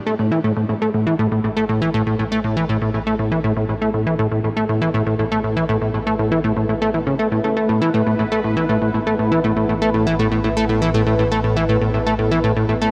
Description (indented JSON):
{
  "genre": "ambient, sequencer-driven space music",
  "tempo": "120 BPM",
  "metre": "4/4",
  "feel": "straight",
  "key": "unclear",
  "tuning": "A4 = 440 Hz",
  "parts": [
    { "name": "sweeping resonant pad", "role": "sustained chords", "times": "0.0-12.9 s", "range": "B3 to B4", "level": "-28 LUFS", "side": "equal", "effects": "chorus" },
    { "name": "analog drone", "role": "bass", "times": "1.2-12.9 s", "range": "A1", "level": "-32 LUFS", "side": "equal", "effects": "chorus" },
    { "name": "plucky analog bass", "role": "riff", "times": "0.1-12.9 s", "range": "A2 to A3", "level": "-20 LUFS", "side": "equal", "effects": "tape echo" }
  ],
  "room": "moderate huge ambient reverb, RT60 7.5 s",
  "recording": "none",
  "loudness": "-19 LUFS",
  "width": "mono",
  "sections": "0.0-12.9 A section",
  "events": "fade-in on analog synth pad 0.0-12.9; fade-in on synth drone 0.0-12.9",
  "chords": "0.0 Asus2",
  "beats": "0.19 0.69 1.19 | 1.69 2.19 2.69 3.19 | 3.69 4.19 4.69 5.19 | 5.69 6.19 6.69 7.19 | 7.69 8.19 8.69 9.19 | 9.69 10.19 10.69 11.19 | 11.69 12.19 12.69"
}